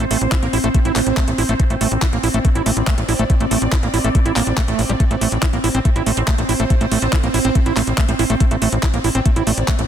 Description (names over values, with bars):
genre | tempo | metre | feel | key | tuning
psychedelic trance | 141 BPM | 4/4 | straight | A minor | A4 = 442 Hz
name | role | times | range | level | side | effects
evolving wavetable pad | sustained chords | 0.0-9.9 s | C4 to D5 | -23 LUFS | right 2 dB | phaser, built-in reverb, sidechain pumping
overdriven acid bass | riff | 0.0-9.8 s | G3 to E4 | -22 LUFS | right 3 dB | auto-pan, sidechain pumping, tape echo
tight sequencer bass | bass | 0.0-9.8 s | A1 | -20 LUFS | equal | none
garage drum kit | drums | 0.0-9.9 s | handclaps, hi-hat | -24 LUFS | equal | soft clipping on snare
electronic kick drum | drums | 0.3-9.8 s | none | -16 LUFS | equal | none
resonant blip pluck | second line | 6.2-8.3 s | A3 to C4 | -32 LUFS | right 5 dB | none
room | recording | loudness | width
light reverb | dense, heavily limited modern master | -15 LUFS | side -9 dB against mid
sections
0.0-9.9 A section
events
none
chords
0.0 A5